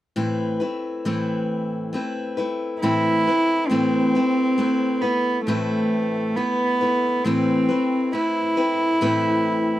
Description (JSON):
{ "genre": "acoustic folk duo or small band", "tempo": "68 BPM", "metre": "4/4", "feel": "straight", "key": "A minor", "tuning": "A4 = 440 Hz", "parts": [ { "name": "picked steel-string acoustic guitar", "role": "accompaniment", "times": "0.2-9.8 s", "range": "A2 to B4", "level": "-24 LUFS", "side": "left 1 dB", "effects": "none" }, { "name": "rich cello", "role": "melody", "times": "2.8-9.8 s", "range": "A3 to E4", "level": "-20 LUFS", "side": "right 1 dB", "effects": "none" } ], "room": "light reverb", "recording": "dry, close 1970s-style studio recording", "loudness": "-19 LUFS", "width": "side -14 dB against mid", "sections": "0.2-3.7 A section; 3.7-9.8 B section", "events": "none", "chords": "0.2 Amadd9" }